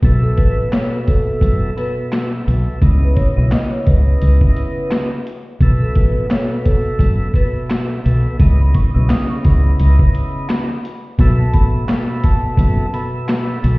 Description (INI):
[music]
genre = hip hop, boom-bap hip-hop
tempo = 86 BPM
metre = 4/4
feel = swing 58% on 16ths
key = C# minor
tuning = A4 = 437 Hz
[part]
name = percussive tonewheel organ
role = accompaniment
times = 0.0-13.8 s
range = B2 to E5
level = -22 LUFS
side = equal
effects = slow rotary speaker, cassette tape, high-pass filter, low-pass filter
[part]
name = deep dub fingered electric bass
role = bass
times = 0.0-13.8 s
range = F#1 to C#2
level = -13 LUFS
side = equal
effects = none
[part]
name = boom bap sampler-style drum kit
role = drums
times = 0.0-13.8 s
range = handclaps, hi-hat, kick drum, snare drum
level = -16 LUFS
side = equal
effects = vintage 12-bit sampler grit
[part]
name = vibraphone with medium mallets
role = melody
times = 0.2-13.2 s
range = A4 to D#6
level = -26 LUFS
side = equal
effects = high-pass filter, low-pass filter, ping-pong delay
[sound]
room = little or no reverb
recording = heard muffled through a wall, stone room reverb, EQ, nothing above 7.7 kHz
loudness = -13 LUFS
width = side -23 dB against mid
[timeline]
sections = 0.0-8.4 A section; 8.4-13.8 B section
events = none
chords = 0.0 B7sus4; 2.8 C#m9; 5.6 B7sus4; 8.4 C#m9; 11.2 B7sus4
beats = | 0.03 0.72 1.42 2.12 | 2.82 3.52 4.21 4.91 | 5.61 6.31 7.00 7.70 | 8.40 9.10 9.79 10.49 | 11.19 11.89 12.59 13.28